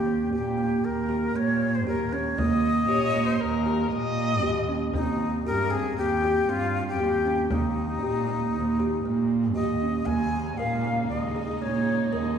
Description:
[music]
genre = contemporary instrumental, chamber music in an uneven meter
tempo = 117 BPM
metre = 5/4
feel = straight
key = Eb mixolydian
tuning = A4 = 440 Hz
[part]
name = breathy bright jazz flute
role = melody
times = 0.0-12.4 s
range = Eb4 to Ab5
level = -28 LUFS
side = left 4 dB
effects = none
[part]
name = kalimba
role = arpeggios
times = 0.0-12.3 s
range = Bb3 to Bb4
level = -27 LUFS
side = right 3 dB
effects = none
[part]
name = warm cello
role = bass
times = 0.0-12.4 s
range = Eb2 to Bb2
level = -29 LUFS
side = right 2 dB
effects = none
[part]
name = frame drum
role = percussion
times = 0.6-12.2 s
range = none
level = -36 LUFS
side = left 1 dB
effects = none
[part]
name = warm viola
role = second line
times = 2.9-4.8 s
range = Bb4 to Eb5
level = -30 LUFS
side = left 1 dB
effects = none
[part]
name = warm studio string section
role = sustained chords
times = 10.1-12.4 s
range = Db3 to Eb4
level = -36 LUFS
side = left 1 dB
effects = none
[sound]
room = wet concert hall reverb, RT60 2.1 s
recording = recorded in a church or concert hall, small room ambience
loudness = -23 LUFS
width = side -8 dB against mid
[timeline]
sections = 0.0-10.1 A section; 10.1-12.4 B section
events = none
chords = 0.0 Eb7; 4.9 Cm/Eb; 7.5 Eb; 10.1 Eb7sus4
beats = 0.33 0.84 1.35 1.87 | 2.38 2.89 3.40 3.92 4.43 | 4.94 5.45 5.97 6.48 6.99 | 7.50 8.02 8.53 9.04 9.55 | 10.06 10.58 11.09 11.60 12.11

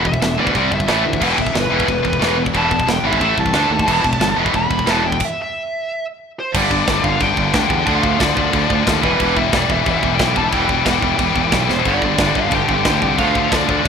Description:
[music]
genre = heavy metal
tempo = 180 BPM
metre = 4/4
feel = straight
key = E phrygian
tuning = A4 = 440 Hz
[part]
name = distorted electric guitar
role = riff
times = 0.0-13.9 s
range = E2 to D4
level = -22 LUFS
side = right 12 dB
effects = overdrive
[part]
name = heavy high-gain guitar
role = riff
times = 0.0-13.9 s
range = E2 to D4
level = -19 LUFS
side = left 12 dB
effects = distortion
[part]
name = fuzz fingered electric bass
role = bass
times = 0.0-13.9 s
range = E1 to E2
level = -22 LUFS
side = equal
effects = overdrive
[part]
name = high-gain lead guitar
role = melody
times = 0.1-13.9 s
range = B4 to B5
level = -21 LUFS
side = right 1 dB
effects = distortion
[part]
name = tight metal drum kit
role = drums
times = 0.1-13.9 s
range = china cymbal, crash cymbal, kick drum, snare drum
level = -21 LUFS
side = equal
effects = none
[part]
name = heavy high-gain guitar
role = riff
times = 1.2-13.9 s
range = G2 to A4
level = -26 LUFS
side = right 1 dB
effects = distortion
[part]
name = high-gain lead guitar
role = second line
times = 11.7-13.9 s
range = C4 to G4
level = -28 LUFS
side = right 3 dB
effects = distortion
[sound]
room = little or no reverb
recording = rough home demo mix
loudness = -14 LUFS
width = side -6 dB against mid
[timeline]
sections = 0.0-6.5 A section; 6.5-13.9 B section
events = lead electric guitar solo 0.0-6.5; stop 5.2-6.5; drum fill 11.7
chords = 0.0 E5; 0.5 C5; 0.9 A5; 1.2 Em; 3.2 A5; 3.5 D5; 3.9 Em; 5.9 N.C.; 6.5 G; 7.9 Dm; 9.0 Em; 11.9 G; 13.2 Dm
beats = 0.22 0.55 0.88 | 1.21 1.54 1.88 2.21 | 2.54 2.88 3.21 3.54 | 3.88 4.21 4.54 4.87 | 5.21 5.54 5.87 6.21 | 6.54 6.87 7.20 7.54 | 7.87 8.20 8.53 8.87 | 9.20 9.53 9.86 10.20 | 10.53 10.86 11.19 11.53 | 11.86 12.19 12.52 12.86 | 13.19 13.52 13.86

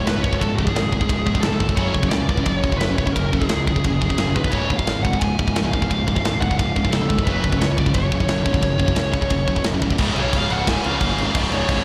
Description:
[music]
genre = heavy metal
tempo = 175 BPM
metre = 4/4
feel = straight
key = C# phrygian dominant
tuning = A4 = 440 Hz
[part]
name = high-gain lead guitar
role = melody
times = 0.0-11.8 s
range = G#4 to G#5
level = -28 LUFS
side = equal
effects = distortion, slapback echo
[part]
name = heavy high-gain guitar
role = riff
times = 0.0-11.8 s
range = C#2 to F#3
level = -25 LUFS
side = equal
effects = distortion, slapback echo
[part]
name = fuzz picked electric bass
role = bass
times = 0.0-11.8 s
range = C#1 to C#2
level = -26 LUFS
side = equal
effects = overdrive
[part]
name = tight metal drum kit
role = drums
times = 0.1-11.8 s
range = crash cymbal, kick drum, ride cymbal, snare drum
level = -24 LUFS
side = equal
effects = none
[sound]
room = small room ambience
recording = live gig heard through the venue's PA, recital hall reverb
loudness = -20 LUFS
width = mono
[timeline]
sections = 0.0-10.0 A section; 10.0-11.8 B section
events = half time 10.0-11.8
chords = 0.0 C#5; 1.8 F#5; 4.5 C#; 7.3 F#5; 10.0 C#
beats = 0.07 | 0.41 0.76 1.10 1.44 | 1.79 2.13 2.47 2.82 | 3.16 3.50 3.85 4.19 | 4.53 4.88 5.22 5.56 | 5.90 6.25 6.59 6.93 | 7.27 7.61 7.95 8.29 | 8.64 8.98 9.32 9.66 | 10.00 10.34 10.68 11.01 | 11.35 11.69

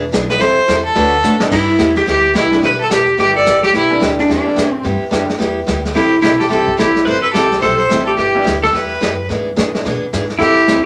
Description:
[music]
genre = country, western swing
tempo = 216 BPM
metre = 4/4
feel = swing 60% on 8ths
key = G major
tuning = A4 = 439 Hz
[part]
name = picked steel-string acoustic guitar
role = accompaniment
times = 0.0-10.8 s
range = C3 to B4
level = -21 LUFS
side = equal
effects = none
[part]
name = upright bass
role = bass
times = 0.0-10.8 s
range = E1 to B2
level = -28 LUFS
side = equal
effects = none
[part]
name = vintage brush drum kit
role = drums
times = 0.1-10.9 s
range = brushed snare drum, crash cymbal, hi-hat, kick drum, snare drum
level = -23 LUFS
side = equal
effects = none
[part]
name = clear fiddle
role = second line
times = 0.3-10.8 s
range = D4 to D5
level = -18 LUFS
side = equal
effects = none
[part]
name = bright upright piano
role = accompaniment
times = 1.4-5.3, 7.9-9.8 s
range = D3 to E4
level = -24 LUFS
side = equal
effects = none
[part]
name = pedal steel guitar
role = melody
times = 1.5-10.8 s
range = D4 to B4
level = -17 LUFS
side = equal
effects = none
[sound]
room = wet club reverb, RT60 0.6 s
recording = none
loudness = -14 LUFS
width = mono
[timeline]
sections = 0.0-1.5 A section; 1.5-10.9 B section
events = fiddle solo 0.0-1.5; drum fill 1.2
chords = 0.4 Am7; 1.0 D6; 1.5 G6; 6.0 C6; 8.2 G6; 9.3 E7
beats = 0.13 | 0.41 0.68 0.96 1.24 | 1.51 1.79 2.07 2.35 | 2.62 2.90 3.18 3.46 | 3.73 4.01 4.29 4.57 | 4.84 5.12 5.40 5.68 | 5.96 6.23 6.51 6.79 | 7.07 7.34 7.62 7.90 | 8.18 8.46 8.73 9.01 | 9.29 9.57 9.85 10.12 | 10.40 10.68

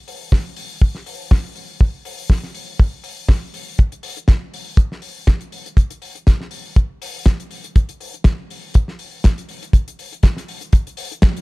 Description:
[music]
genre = nu-disco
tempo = 121 BPM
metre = 4/4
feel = swing 56% on 16ths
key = none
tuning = none
[part]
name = damped 70s drum kit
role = drums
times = 0.1-11.4 s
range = hi-hat, snare drum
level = -26 LUFS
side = left 1 dB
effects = small room ambience
[part]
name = kick drum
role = drums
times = 0.3-11.3 s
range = none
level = -12 LUFS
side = equal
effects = small room ambience
[sound]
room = little or no reverb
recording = dry, gritty hardware recording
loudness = -17 LUFS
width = side -25 dB against mid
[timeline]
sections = 0.0-11.4 A section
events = band accent 11.2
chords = none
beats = 0.32 0.81 1.31 | 1.80 2.30 2.80 3.29 | 3.79 4.28 4.78 5.28 | 5.77 6.27 6.76 7.26 | 7.75 8.25 8.75 9.24 | 9.74 10.23 10.73 11.23

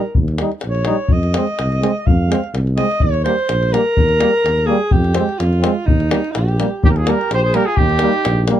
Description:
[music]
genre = balkan folk, Balkan brass band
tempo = 126 BPM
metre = 2/4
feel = straight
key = Eb mixolydian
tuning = A4 = 440 Hz
[part]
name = mellow alto saxophone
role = second line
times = 0.0-8.5 s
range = Eb4 to F5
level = -20 LUFS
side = right 1 dB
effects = none
[part]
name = clear euphonium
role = accompaniment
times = 0.0-8.6 s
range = G3 to Ab3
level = -21 LUFS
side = right 8 dB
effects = none
[part]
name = davul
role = percussion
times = 0.1-8.6 s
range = none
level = -18 LUFS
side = left 2 dB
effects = none
[part]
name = dark tuba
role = bass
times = 0.2-8.5 s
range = Bb1 to F2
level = -18 LUFS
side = equal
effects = none
[part]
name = warm trombone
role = accompaniment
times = 0.4-8.6 s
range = Bb3 to Eb4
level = -22 LUFS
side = left 8 dB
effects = none
[part]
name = mellow cornet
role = melody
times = 6.8-8.5 s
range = G4 to C5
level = -18 LUFS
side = right 2 dB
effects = none
[sound]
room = little or no reverb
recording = close, detailed microphones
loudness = -14 LUFS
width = side -11 dB against mid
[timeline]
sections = 0.0-6.8 A section; 6.8-8.6 B section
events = alto saxophone solo 0.0-6.8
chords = 0.0 Eb; 1.1 Fm; 3.0 Eb; 4.9 Fm; 5.9 Eb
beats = | 0.16 0.64 | 1.12 1.59 | 2.07 2.55 | 3.03 3.50 | 3.98 4.46 | 4.93 5.41 | 5.88 6.36 | 6.84 7.31 | 7.79 8.26

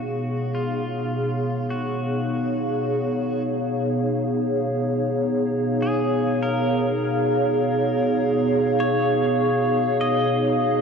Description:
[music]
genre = ambient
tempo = 51 BPM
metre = 4/4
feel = straight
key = unclear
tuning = A4 = 440 Hz
[part]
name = pedal steel guitar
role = melody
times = 0.0-10.8 s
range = E#4 to D#5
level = -32 LUFS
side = equal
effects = tape echo
[part]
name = warbly tape-like pad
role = sustained chords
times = 0.0-10.8 s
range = B2 to E#5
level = -20 LUFS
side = equal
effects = chorus, built-in reverb
[sound]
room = wet cathedral reverb, RT60 5.2 s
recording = cassette tape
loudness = -20 LUFS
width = side -6 dB against mid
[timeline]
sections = 0.0-10.8 A section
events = fade-in on pedal steel guitar 0.0-10.8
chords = 0.0 C#9/B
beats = 0.52 1.71 2.88 | 4.05 5.23 6.42 7.60 | 8.79 9.98

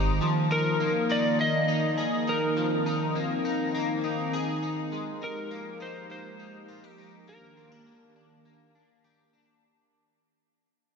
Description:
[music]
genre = dream pop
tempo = 102 BPM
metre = 4/4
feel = straight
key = Eb major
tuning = A4 = 440 Hz
[part]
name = hollow soft pad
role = sustained chords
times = 0.0-9.6 s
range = Eb3 to Bb4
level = -30 LUFS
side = right 1 dB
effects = chorus, shimmer reverb
[part]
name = electric guitar at the edge of break-up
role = arpeggios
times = 0.0-10.2 s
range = F3 to Ab4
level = -31 LUFS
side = left 3 dB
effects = analog chorus, ping-pong delay, shimmer reverb
[part]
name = electric slide guitar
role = melody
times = 0.5-9.3 s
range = Bb4 to Eb5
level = -30 LUFS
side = equal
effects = ping-pong delay, shimmer reverb
[sound]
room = moderate huge ambient reverb, RT60 4.7 s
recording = none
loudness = -25 LUFS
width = side -5 dB against mid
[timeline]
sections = 0.0-9.6 A section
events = fade-out 0.0-9.6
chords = 0.2 Bb7sus4; 4.9 Fm11; 7.3 Ebmaj7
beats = | 0.21 0.80 1.39 1.98 | 2.57 3.15 3.74 4.33 | 4.92 5.51 6.09 6.68 | 7.27 7.86 8.45 9.04

